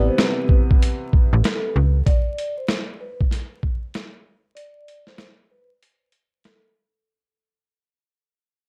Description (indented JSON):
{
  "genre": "hip hop, boom-bap hip-hop",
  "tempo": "96 BPM",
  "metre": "4/4",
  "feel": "swing 63% on 16ths",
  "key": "unclear",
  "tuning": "A4 = 440 Hz",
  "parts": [
    { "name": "vibraphone with soft mallets", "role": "melody", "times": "0.0-6.7 s", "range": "A4 to D5", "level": "-32 LUFS", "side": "equal", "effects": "high-pass filter, low-pass filter, tape echo" },
    { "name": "warm upright piano", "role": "accompaniment", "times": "0.0-2.0 s", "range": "C3 to B3", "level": "-28 LUFS", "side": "equal", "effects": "cassette tape, high-pass filter, low-pass filter" },
    { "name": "slap-like FM bass", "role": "bass", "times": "0.0-2.0 s", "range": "A1 to C#2", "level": "-19 LUFS", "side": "equal", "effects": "none" },
    { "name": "boom bap sampler-style drum kit", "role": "drums", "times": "0.2-6.6 s", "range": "hi-hat, kick drum, snare drum", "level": "-21 LUFS", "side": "equal", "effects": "none" }
  ],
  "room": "little or no reverb",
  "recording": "dark, warm production, vinyl crackle",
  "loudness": "-20 LUFS",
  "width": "mono",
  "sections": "0.0-7.1 A section",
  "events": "fade-out 0.0-7.1; break 2.1-7.1",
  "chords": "0.0 Am7 (rootless); 2.1 N.C.",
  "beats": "0.19 0.81 1.44 | 2.06 2.69 3.31 3.94 | 4.56 5.19 5.81 6.44"
}